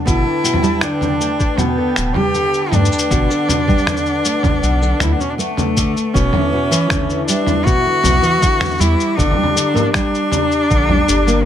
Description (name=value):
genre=folktronica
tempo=79 BPM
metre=4/4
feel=straight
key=unclear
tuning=A4 = 442 Hz
part: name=warm analog pad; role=sustained chords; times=0.0-11.5 s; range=D3 to D6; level=-25 LUFS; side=left 2 dB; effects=chorus, plate reverb
part: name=nylon-string guitar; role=arpeggios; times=0.0-11.4 s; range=B2 to D4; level=-21 LUFS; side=right 1 dB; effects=plate reverb
part: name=rich cello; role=melody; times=0.1-11.4 s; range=A3 to G4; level=-17 LUFS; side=left 1 dB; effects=ping-pong delay, plate reverb
part: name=warm sub bass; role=bass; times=0.1-11.5 s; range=D1 to G2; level=-17 LUFS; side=equal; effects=none
part: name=electronic kick drum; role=drums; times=0.1-10.9 s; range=none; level=-18 LUFS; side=equal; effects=none
part: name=lo-fi sampler-style drum kit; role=drums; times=0.1-11.4 s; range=finger snaps, shaker, toms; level=-20 LUFS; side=equal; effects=none
room=light reverb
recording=none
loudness=-13 LUFS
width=side -10 dB against mid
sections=0.0-6.1 A section; 6.1-11.5 B section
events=none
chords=0.1 Gadd9; 6.1 Em7; 9.2 Gm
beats=| 0.07 0.83 1.59 2.35 | 3.11 3.87 4.63 5.39 | 6.15 6.91 7.67 8.43 | 9.18 9.94 10.70